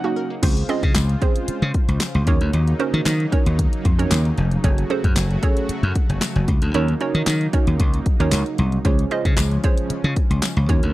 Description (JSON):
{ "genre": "dance-pop", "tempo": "114 BPM", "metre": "4/4", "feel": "straight", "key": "Db major", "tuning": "A4 = 440 Hz", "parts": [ { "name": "hollow square pluck", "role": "accompaniment", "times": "0.0-10.9 s", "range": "Bb3 to Eb5", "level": "-25 LUFS", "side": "right 5 dB", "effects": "chorus, sidechain pumping" }, { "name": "warm analog pad", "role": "sustained chords", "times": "0.0-10.9 s", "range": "Db3 to C5", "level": "-30 LUFS", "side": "equal", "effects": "chorus, tremolo, sidechain pumping" }, { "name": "slap bass", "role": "bass", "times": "0.4-10.9 s", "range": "F1 to Eb3", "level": "-19 LUFS", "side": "equal", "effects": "sidechain pumping" }, { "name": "pop drum kit", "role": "drums", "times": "0.4-10.9 s", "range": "crash cymbal, handclaps, hi-hat, kick drum, snare drum", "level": "-20 LUFS", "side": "equal", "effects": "none" }, { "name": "tambourine", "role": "percussion", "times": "1.0-10.6 s", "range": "none", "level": "-32 LUFS", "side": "left 16 dB", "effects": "none" } ], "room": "digital ambience", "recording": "dry, close 1970s-style studio recording", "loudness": "-17 LUFS", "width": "side -17 dB against mid", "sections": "0.4-10.9 A section", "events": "break 0.0-0.4; drop 0.4-10.9", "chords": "0.4 Dbmaj7; 2.3 Ebm7; 4.6 Gbmadd9; 6.7 Ebm7; 8.8 Dbmaj7" }